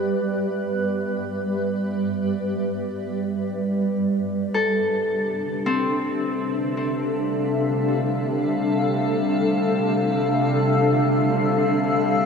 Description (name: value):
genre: ambient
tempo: free time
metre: none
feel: none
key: unclear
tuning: A4 = 441 Hz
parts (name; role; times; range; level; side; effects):
- granular cloud pad; sustained chords; 0.0-12.3 s; G3 to F5; -22 LUFS; equal; built-in reverb
- Celtic harp; arpeggios; 4.5-11.0 s; C4 to A4; -26 LUFS; left 2 dB; ping-pong delay
- bowed-like drone; drone; 5.5-12.3 s; C3 to G3; -25 LUFS; right 1 dB; built-in reverb
room: wet huge ambient reverb, RT60 7.1 s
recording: cassette tape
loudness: -20 LUFS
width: side -6 dB against mid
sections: 0.0-12.3 A section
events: none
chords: 0.0 G6; 4.6 Dm7/C